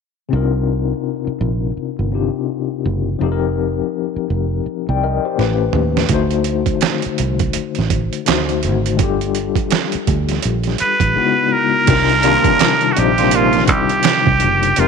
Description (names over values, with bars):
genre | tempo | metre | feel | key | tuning
R&B, neo-soul | 83 BPM | 4/4 | swing 61% on 16ths | C dorian | A4 = 440 Hz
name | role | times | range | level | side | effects
overdriven tine electric piano | accompaniment | 0.3-14.9 s | A2 to A5 | -19 LUFS | left 11 dB | fast tremolo
fingered electric bass | bass | 0.3-14.9 s | F1 to Eb2 | -20 LUFS | right 2 dB | none
boom bap sampler-style drum kit | drums | 5.4-14.9 s | crash cymbal, handclaps, hi-hat, kick drum, snare drum, toms | -19 LUFS | right 8 dB | overdrive
trumpet with straight mute | melody | 10.8-14.9 s | F4 to B4 | -15 LUFS | right 2 dB | none
electric guitar through a small old amp | second line | 12.2-13.6 s | Eb3 to F4 | -20 LUFS | right 15 dB | none
room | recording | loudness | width
light reverb, digital ambience | 1960s-style stereo with parts hard left and right | -14 LUFS | side -5 dB against mid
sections
0.3-11.9 A section; 11.9-14.9 B section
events
drum fill 5.4-6.1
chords
0.3 Cm11; 3.2 F9sus4; 5.4 A7; 6.1 D7b9; 9.0 Gm9; 11.2 Dbm11; 11.9 Cm11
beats
| 0.31 1.04 1.76 2.48 | 3.21 3.93 4.65 5.37 | 6.10 6.82 7.54 8.27 | 8.99 9.71 10.44 11.16 | 11.88 12.60 13.33 14.05 | 14.77